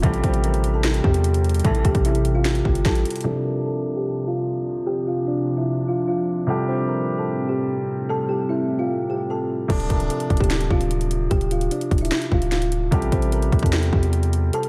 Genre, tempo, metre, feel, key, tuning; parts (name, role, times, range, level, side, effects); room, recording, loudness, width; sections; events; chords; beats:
hip hop, trap; 149 BPM; 4/4; half-time; D minor; A4 = 441 Hz
kalimba; melody; 0.0-14.7 s; C4 to Bb5; -28 LUFS; equal; low-pass filter, analog delay
clear concert grand piano; accompaniment; 0.0-14.7 s; C3 to G4; -30 LUFS; equal; low-pass filter
deep dark ambient pad; sustained chords; 0.0-9.7 s; A2 to G4; -31 LUFS; equal; chorus, built-in reverb, low-pass filter
dark studio string section; stabs; 0.0-1.8 s; C2 to E3; -33 LUFS; equal; analog delay
hard-hitting 808-style bass; bass; 0.0-3.0, 9.7-14.5 s; D1 to E2; -24 LUFS; equal
trap drum kit; drums; 0.0-3.3, 9.7-14.7 s; crash cymbal, hi-hat, kick drum, snare drum; -25 LUFS; equal
moderate lush hall reverb, RT60 1.8 s; dreamy mix soaked in reverb; -22 LUFS; mono
0.0-3.3 A section; 3.3-9.7 B section; 9.7-14.7 C section
filter sweep 3.3-9.7; break 14.5
0.0 Am7; 3.3 Dm7; 6.5 Am7; 9.7 Dm7; 12.9 Am7
| 0.04 0.44 0.84 1.24 | 1.65 2.05 2.45 2.85 | 3.26 3.66 4.06 4.46 | 4.87 5.27 5.67 6.08 | 6.48 6.88 7.28 7.69 | 8.09 8.49 8.89 9.30 | 9.70 10.10 10.50 10.91 | 11.31 11.71 12.12 12.52 | 12.92 13.32 13.73 14.13 | 14.53